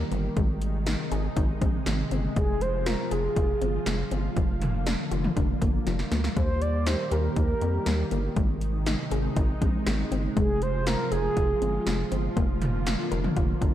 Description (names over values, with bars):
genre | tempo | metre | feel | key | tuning
synth-pop | 120 BPM | 4/4 | straight | unclear | A4 = 440 Hz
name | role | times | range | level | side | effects
mellow horn-like synth lead | melody | 0.0-12.1 s | Ab4 to D5 | -30 LUFS | right 1 dB | chorus, analog delay
string machine, cellos | sustained chords | 0.0-13.7 s | C3 to G4 | -32 LUFS | equal | ensemble chorus
soft round pluck | arpeggios | 0.0-13.7 s | F3 to Bb4 | -35 LUFS | left 7 dB | chorus, analog delay
rubbery square bass | bass | 0.0-13.7 s | F1 to F2 | -28 LUFS | equal | none
80s electronic pad drums | drums | 0.1-13.7 s | hi-hat, kick drum, snare drum, toms | -28 LUFS | equal | gated reverb on snare and toms
room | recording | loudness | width
moderate lush hall reverb, RT60 2.1 s | dark, warm production | -24 LUFS | side -12 dB against mid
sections
0.0-13.7 A section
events
drum fill 5.9-6.4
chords
0.4 Ab; 2.4 Fm; 4.4 Bb/F; 6.4 Eb; 8.4 Ab; 10.4 Fm; 12.4 Bb/F